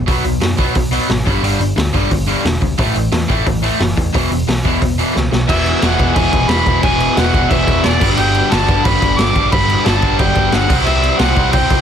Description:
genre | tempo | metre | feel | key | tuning
punk rock | 178 BPM | 4/4 | straight | unclear | A4 = 439 Hz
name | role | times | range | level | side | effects
crunchy overdriven guitar | riff | 0.0-11.8 s | E2 to C4 | -20 LUFS | right 14 dB | none
raw garage guitar | riff | 0.0-11.8 s | E2 to C4 | -20 LUFS | left 14 dB | overdrive
overdriven picked electric bass | bass | 0.1-11.8 s | E1 to F#2 | -18 LUFS | equal | none
raw garage drum kit | drums | 0.1-11.8 s | crash cymbal, hi-hat, kick drum, snare drum | -17 LUFS | equal | none
mellow harmonica | melody | 5.5-11.8 s | D5 to D6 | -18 LUFS | equal | none
distorted electric guitar | riff | 5.5-11.8 s | G2 to G#4 | -21 LUFS | equal | overdrive
room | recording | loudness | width
little or no reverb | dense, heavily limited modern master | -12 LUFS | side -8 dB against mid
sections
0.0-5.5 A section; 5.5-11.8 B section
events
drum fill 5.2-5.5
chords
0.1 B5; 1.3 G5; 2.8 A5; 4.1 E5; 5.5 E; 8.0 G; 10.7 C

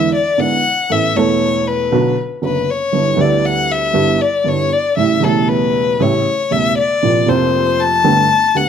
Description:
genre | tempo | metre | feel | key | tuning
tango | 118 BPM | 4/4 | rubato | unclear | A4 = 437 Hz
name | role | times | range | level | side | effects
warm violin | second line | 0.0-8.7 s | A4 to A5 | -15 LUFS | left 6 dB | none
dark upright piano | accompaniment | 0.0-8.7 s | E1 to A4 | -16 LUFS | right 4 dB | none
room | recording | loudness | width
light reverb | close, detailed microphones | -12 LUFS | side -8 dB against mid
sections
0.0-8.7 A section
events
violin solo 0.0-8.7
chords
0.0 E7; 0.9 Asus2; 1.9 Bm; 2.9 G6; 5.0 A7; 7.0 Bbsus2; 8.0 Gadd9

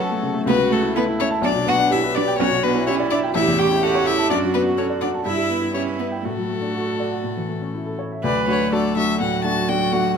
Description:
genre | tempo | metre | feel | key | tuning
quick classical-period movement for piano quartet | 125 BPM | 4/4 | straight | D major | A4 = 440 Hz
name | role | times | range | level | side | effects
rich violin | melody | 0.0-10.2 s | F#4 to A5 | -24 LUFS | left 7 dB | none
warm cello | second line | 0.0-10.2 s | F#3 to G4 | -26 LUFS | right 8 dB | none
dark viola | accompaniment | 0.0-10.2 s | D4 to B4 | -25 LUFS | right 4 dB | none
warm baby grand piano | accompaniment | 0.0-10.2 s | A1 to A5 | -22 LUFS | left 2 dB | none
room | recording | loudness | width
moderate recital hall reverb, RT60 1.7 s | close, detailed microphones | -18 LUFS | side -6 dB against mid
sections
0.0-8.2 A section; 8.2-10.2 B section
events
none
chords
0.5 A/C#; 1.4 G/B; 2.4 Em7/B; 3.3 A; 4.3 D/F#; 5.3 Em/G; 6.2 D/A; 7.2 A; 8.2 D

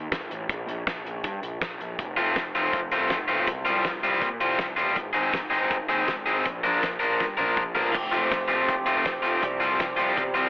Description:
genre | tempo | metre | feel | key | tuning
indie rock | 161 BPM | 4/4 | straight | F major | A4 = 440 Hz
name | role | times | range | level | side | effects
fuzz picked electric bass | bass | 0.0-10.5 s | F1 to C3 | -34 LUFS | equal | overdrive
loose indie drum kit | drums | 0.1-10.4 s | crash cymbal, hi-hat, kick drum, snare drum, toms | -32 LUFS | equal | none
crunchy overdriven guitar | riff | 2.2-10.5 s | F3 to Bb4 | -23 LUFS | left 1 dB | none
clean electric guitar | riff | 7.9-10.5 s | C3 to G4 | -29 LUFS | right 2 dB | wide subtle chorus, slapback echo
tube shaker | percussion | 7.9-10.5 s | none | -56 LUFS | right 1 dB | none
room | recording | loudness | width
light reverb, small room ambience | heavily compressed radio sound, multiband compression, telephone sound | -23 LUFS | side -24 dB against mid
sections
0.0-7.9 A section; 7.9-10.5 B section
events
drum fill 7.2-7.9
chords
0.5 N.C.; 2.0 F; 3.5 Csus4; 5.0 Ab; 6.4 Bb; 7.9 Fadd9; 9.4 Csus4

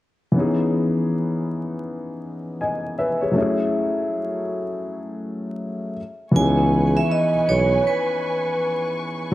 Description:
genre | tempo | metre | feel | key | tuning
lo-fi hip hop | 80 BPM | 4/4 | swing 61% on 16ths | C# minor | A4 = 440 Hz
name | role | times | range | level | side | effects
dark upright piano | accompaniment | 0.3-9.3 s | E3 to G#5 | -22 LUFS | left 1 dB | none
warm studio string section | sustained chords | 6.3-9.3 s | B4 to C#6 | -29 LUFS | equal | none
vibraphone with hard mallets | melody | 6.4-8.9 s | B4 to G#5 | -21 LUFS | right 2 dB | analog delay
mellow tuba | bass | 6.4-7.8 s | B1 to C#2 | -20 LUFS | equal | none
room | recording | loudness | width
moderate spring reverb, RT60 1.9 s, small room ambience | dark, warm production, vinyl crackle | -20 LUFS | side -15 dB against mid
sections
0.3-6.3 A section; 6.3-9.3 B section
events
none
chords
0.3 C#m7; 3.3 F#m7; 6.0 N.C.; 6.3 C#m7

